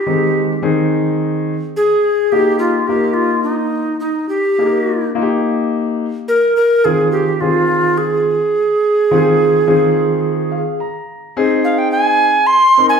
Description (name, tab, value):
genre	soul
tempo	106 BPM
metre	4/4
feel	straight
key	unclear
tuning	A4 = 440 Hz
part	mellow tenor recorder	melody	0.0-13.0 s	Eb4 to C6	-13 LUFS	right 1 dB	none
part	warm concert grand piano	accompaniment	0.1-13.0 s	Eb3 to Bb5	-17 LUFS	left 1 dB	none
room	wet large studio reverb, RT60 1.3 s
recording	band playing live in one room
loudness	-13 LUFS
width	side -6 dB against mid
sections	0.0-11.4 A section; 11.4-13.0 B section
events	grand piano fill 10.2-11.4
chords	0.0 Ab/Eb; 2.3 Eb; 6.8 Fm/Eb; 11.4 Ab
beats	| 0.06 0.62 1.19 1.75 | 2.32 2.88 3.45 4.01 | 4.58 5.14 5.71 6.28 | 6.84 7.41 7.97 8.54 | 9.10 9.67 10.23 10.79 | 11.36 11.92 12.49